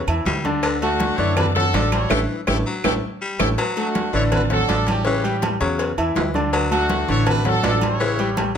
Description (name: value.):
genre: latin, salsa.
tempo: 163 BPM.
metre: 4/4.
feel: straight.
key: D major.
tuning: A4 = 441 Hz.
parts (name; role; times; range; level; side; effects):
upright bass; bass; 0.0-8.5 s; A1 to F#2; -24 LUFS; right 1 dB; none.
clear baby grand piano; accompaniment; 0.1-8.6 s; C#3 to D6; -24 LUFS; left 1 dB; none.
agogo bells and timbales; percussion; 0.1-8.6 s; none; -28 LUFS; right 5 dB; none.
claves; percussion; 0.1-3.5 s; none; -31 LUFS; right 10 dB; none.
congas; percussion; 0.1-8.6 s; none; -28 LUFS; equal; none.
breathy baritone saxophone; second line; 0.3-8.6 s; D3 to G3; -28 LUFS; left 5 dB; none.
cowbell; percussion; 0.3-8.6 s; none; -29 LUFS; left 4 dB; none.
bright horn section; melody; 0.8-8.5 s; A3 to C#5; -24 LUFS; equal; none.
room: light reverb.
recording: close, detailed microphones.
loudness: -18 LUFS.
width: side -8 dB against mid.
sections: 0.0-3.6 A section; 3.6-8.6 A section.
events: drum fill 2.1-3.6; band accent 2.1-3.6.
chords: 0.0 A7(no3) (rootless); 0.6 D; 2.1 A7; 3.6 D; 5.1 A7; 6.5 D; 8.0 A7.